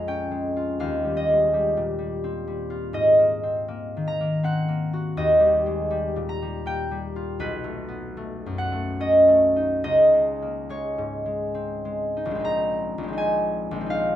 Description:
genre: classical, solo harp piece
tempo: 63-86 BPM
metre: 3/4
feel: rubato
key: Db lydian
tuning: A4 = 440 Hz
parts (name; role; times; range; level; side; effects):
- concert harp; solo; 0.0-14.2 s; Bb1 to Bb5; -21 LUFS; equal; none
room: moderate studio reverb, RT60 0.5 s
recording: close, detailed microphones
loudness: -21 LUFS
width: side -12 dB against mid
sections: 0.0-12.4 A section; 12.4-14.2 B section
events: none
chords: 0.0 Bbm7; 0.8 Eb13; 2.9 Ab9; 5.2 Eb; 7.4 Cb9; 9.8 Dbsus2; 12.4 Bbm11

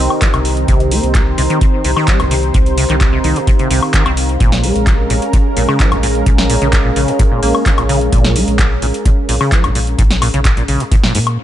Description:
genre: acid house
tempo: 129 BPM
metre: 4/4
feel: straight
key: unclear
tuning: A4 = 441 Hz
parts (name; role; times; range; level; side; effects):
- lush unison pad; sustained chords; 0.0-11.3 s; Eb3 to C5; -21 LUFS; right 1 dB; chorus, sidechain pumping
- liquid acid bass; riff; 0.0-11.2 s; Bb1 to C4; -19 LUFS; equal; tube saturation, wide subtle chorus, cassette tape, ping-pong delay
- round analog bass; bass; 0.0-11.4 s; Bb1 to Bb2; -18 LUFS; equal; tube saturation, sidechain pumping
- warbly tape-like pad; texture; 0.0-11.4 s; C4 to Bb5; -22 LUFS; equal; chorus, built-in reverb, sidechain pumping
- electro analog drum machine; drums; 0.1-11.4 s; handclaps, hi-hat, snare drum, woodblock; -19 LUFS; left 1 dB; none
- electronic kick drum; drums; 0.2-11.0 s; none; -13 LUFS; equal; none
room: little or no reverb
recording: nothing above 11.0 kHz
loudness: -11 LUFS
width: side -12 dB against mid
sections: 0.0-11.4 A section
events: none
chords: 0.0 Cm7; 4.4 Bbm7

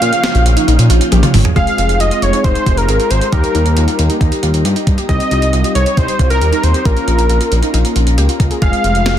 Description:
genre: synth-pop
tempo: 136 BPM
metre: 4/4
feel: straight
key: F minor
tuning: A4 = 440 Hz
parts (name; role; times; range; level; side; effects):
- wide unison lead; melody; 0.0-9.2 s; Bb4 to F5; -17 LUFS; equal; tape echo, shimmer reverb
- warm analog keys; accompaniment; 0.0-9.2 s; F3 to Db5; -20 LUFS; left 2 dB; chorus, shimmer reverb
- lush unison pad; sustained chords; 0.0-1.5 s; none; barely audible; none; none
- warbly dusty pluck; arpeggios; 0.0-9.1 s; Eb4 to Ab4; -23 LUFS; right 1 dB; chorus, phaser, tape echo, shimmer reverb
- smooth synth bass; bass; 0.0-9.2 s; F1 to Bb2; -14 LUFS; equal; none
- clean 12-bit digital drum machine; drums; 0.0-9.2 s; hi-hat, kick drum, snare drum, toms; -17 LUFS; equal; overdrive
room: light reverb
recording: dense, heavily limited modern master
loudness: -10 LUFS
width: side -10 dB against mid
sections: 0.0-1.6 A section; 1.6-9.2 B section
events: drum fill 1.1-1.6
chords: 0.0 Bbm; 1.6 Fm; 3.3 Eb; 5.1 Cm; 6.9 Bbm; 8.6 Fm

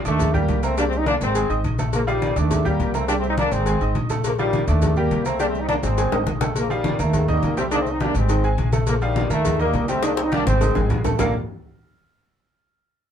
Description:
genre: latin, salsa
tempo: 207 BPM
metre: 4/4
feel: straight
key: Bb major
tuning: A4 = 440 Hz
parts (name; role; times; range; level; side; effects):
- bright trombone section; melody; 0.1-11.3 s; Eb3 to Eb4; -23 LUFS; left 1 dB; none
- bright upright piano; accompaniment; 0.1-11.3 s; Eb3 to Eb6; -27 LUFS; right 2 dB; none
- upright bass; bass; 0.1-11.3 s; Ab1 to Eb2; -23 LUFS; equal; none
- congas; percussion; 0.1-11.3 s; none; -27 LUFS; left 1 dB; none
- cowbell and bongos; percussion; 0.1-11.3 s; none; -29 LUFS; left 5 dB; none
- maracas; percussion; 0.1-11.3 s; none; -40 LUFS; right 6 dB; none
room: moderate small room reverb, RT60 0.5 s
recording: band playing live in one room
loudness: -18 LUFS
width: side -8 dB against mid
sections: 0.0-6.6 A section; 6.6-11.2 B section; 11.2-12.3 C section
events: drum fill 5.8-6.6, 10.0-11.2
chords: 0.2 Ebmaj7; 0.8 C5; 1.4 Ab; 1.9 Bbmaj7; 2.5 Ebmaj7; 3.1 C5; 3.7 Ab; 4.2 Bbmaj7; 4.8 Ebmaj7; 5.4 C5; 6.0 Ab; 6.6 Bb5; 7.1 Eb; 7.7 Cm7; 8.3 Ab; 8.9 Bb5; 9.5 Eb; 10.0 Cm7; 10.6 Ab; 11.2 Bbmaj7

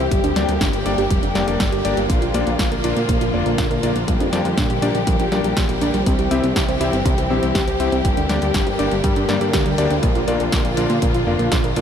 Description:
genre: italo disco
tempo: 121 BPM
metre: 4/4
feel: straight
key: G dorian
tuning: A4 = 440 Hz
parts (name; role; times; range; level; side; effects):
- dark studio string section; sustained chords; 0.0-11.8 s; D3 to G4; -23 LUFS; left 1 dB; none
- soft round pluck; arpeggios; 0.0-11.8 s; G2 to C5; -24 LUFS; right 3 dB; chorus, analog delay
- fat analog bass; bass; 0.0-11.8 s; F1 to Bb2; -23 LUFS; equal; tube saturation, analog delay
- electronic kick drum; drums; 0.1-11.6 s; none; -22 LUFS; equal; small room ambience
- house drum kit; drums; 0.1-11.8 s; hi-hat, snare drum; -26 LUFS; equal; small room ambience
- clear electric grand piano; stabs; 0.4-11.8 s; Bb3 to E5; -24 LUFS; left 4 dB; analog delay
room: moderate huge ambient reverb, RT60 7.2 s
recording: dreamy mix soaked in reverb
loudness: -16 LUFS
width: side -8 dB against mid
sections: 0.0-11.8 A section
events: none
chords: 0.1 Gm; 2.1 Bb; 4.1 Gm/Bb; 6.1 C; 8.0 Gm; 10.0 Bb

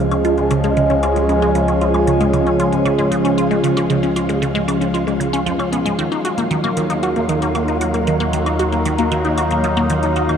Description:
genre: ambient, sequencer-driven space music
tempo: 115 BPM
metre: 4/4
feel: straight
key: unclear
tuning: A4 = 440 Hz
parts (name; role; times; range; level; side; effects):
- sweeping resonant pad; sustained chords; 0.0-10.4 s; F3 to Bb4; -18 LUFS; equal; chorus, phaser, shimmer reverb
- resonant blip pluck; riff; 0.0-10.4 s; Db3 to Gb4; -19 LUFS; right 1 dB; phaser, tape echo, shimmer reverb
- fat analog bass; bass; 0.0-10.4 s; Db2 to Eb2; -24 LUFS; equal; none
- wind-like tuned noise texture; texture; 0.0-10.4 s; F4 to F5; -28 LUFS; left 1 dB; built-in reverb, shimmer reverb
- electronic hi-hat and woodblock; percussion; 0.1-10.4 s; none; -32 LUFS; left 1 dB; tape echo
room: wet huge ambient reverb, RT60 8.6 s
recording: none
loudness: -15 LUFS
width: side -8 dB against mid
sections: 0.0-10.4 A section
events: filter sweep on synth arpeggio sound 0.0-10.4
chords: 0.0 Db; 6.0 Ebm

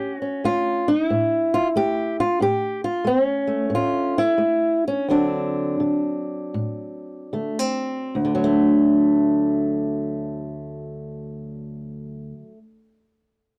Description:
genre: acoustic country blues, solo or duo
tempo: 71-92 BPM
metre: 4/4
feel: swing 66% on 8ths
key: D mixolydian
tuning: A4 = 439 Hz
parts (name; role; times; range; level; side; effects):
- fingerpicked old ladder-braced acoustic guitar; solo; 0.0-12.6 s; D2 to G4; -22 LUFS; equal; none
room: moderate booth ambience, RT60 0.2 s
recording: dry, close 1970s-style studio recording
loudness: -22 LUFS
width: mono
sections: 0.0-8.2 A section; 8.2-11.5 B section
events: slowing down 2.4-8.2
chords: 0.0 A7; 5.1 D7; 8.2 D

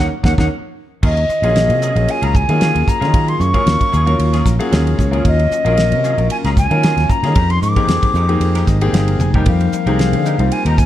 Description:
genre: electric jazz fusion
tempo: 114 BPM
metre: 4/4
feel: swing 54% on 16ths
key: Eb dorian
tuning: A4 = 440 Hz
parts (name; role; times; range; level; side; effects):
- silver concert flute; melody; 0.0-10.9 s; Eb5 to D6; -18 LUFS; left 1 dB; slapback echo
- bright grand piano; accompaniment; 0.0-10.9 s; Gb3 to Bb5; -21 LUFS; left 3 dB; none
- sustaining fretless electric bass; bass; 0.0-10.9 s; F1 to Eb3; -16 LUFS; equal; none
- damped 70s drum kit; drums; 0.2-10.9 s; crash cymbal, hi-hat, kick drum, ride cymbal, snare drum, toms; -18 LUFS; equal; none
- hollow soft pad; sustained chords; 1.0-10.9 s; Eb3 to Bb4; -27 LUFS; left 3 dB; ensemble chorus
- semi-hollow electric guitar; stabs; 1.0-10.8 s; Gb3 to Bb4; -30 LUFS; right 1 dB; ensemble chorus
room: light reverb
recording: dark, warm production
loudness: -12 LUFS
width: side -12 dB against mid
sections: 0.0-1.0 A section; 1.0-10.9 B section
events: band accent 0.0-1.0; grand piano fill 0.2-1.0, 4.2-5.2, 8.4-9.5; drum fill 0.8, 9.2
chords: 0.0 Eb7(no3); 1.0 Ebm11; 7.4 Fm11

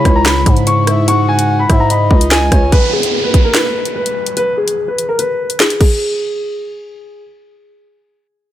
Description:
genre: hip hop, drill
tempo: 146 BPM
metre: 4/4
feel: half-time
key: unclear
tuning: A4 = 439 Hz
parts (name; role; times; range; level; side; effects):
- dark grand piano; melody; 0.0-7.2 s; G#4 to C#6; -16 LUFS; left 1 dB; low-pass filter
- breathy flute-like synth lead; second line; 0.0-2.7 s; C#5 to F#5; -22 LUFS; left 3 dB; chorus, ping-pong delay
- airy breathy pad; sustained chords; 0.0-2.7 s; C#3 to E4; -21 LUFS; left 1 dB; chorus
- growling 808-style bass; bass; 0.0-2.7 s; C#2 to G#2; -14 LUFS; equal; none
- drill drum kit; drums; 0.1-5.9 s; crash cymbal, handclaps, hi-hat, kick drum, rim click, snare drum; -13 LUFS; equal; none
- downlifter; sound effects; 2.7-6.0 s; none; -21 LUFS; right 2 dB; none
room: light reverb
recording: none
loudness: -11 LUFS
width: side -12 dB against mid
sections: 0.0-2.7 A section; 2.7-6.0 B section; 6.0-8.5 C section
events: filter sweep on grand piano 2.7-6.0; kick muted 4.4-6.0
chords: 0.0 C#m; 2.7 N.C.

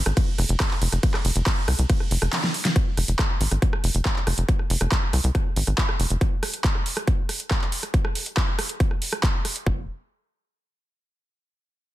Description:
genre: psychedelic trance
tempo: 139 BPM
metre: 4/4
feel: straight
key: F minor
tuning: A4 = 441 Hz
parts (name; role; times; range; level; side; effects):
- tight sequencer bass; bass; 0.1-6.2, 9.7-9.9 s; F1 to C2; -22 LUFS; equal; none
- big-room dance drum kit; drums; 0.1-9.6 s; handclaps, hi-hat, ride cymbal, rim click, snare drum; -26 LUFS; right 1 dB; overdrive
- electronic kick drum; drums; 0.2-9.8 s; none; -22 LUFS; equal; none
room: little or no reverb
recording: dense, heavily limited modern master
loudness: -21 LUFS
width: side -15 dB against mid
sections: 0.0-2.8 A section; 2.8-9.7 B section; 9.7-11.4 C section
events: drop 0.0-2.8; drum fill 2.3-2.8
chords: none

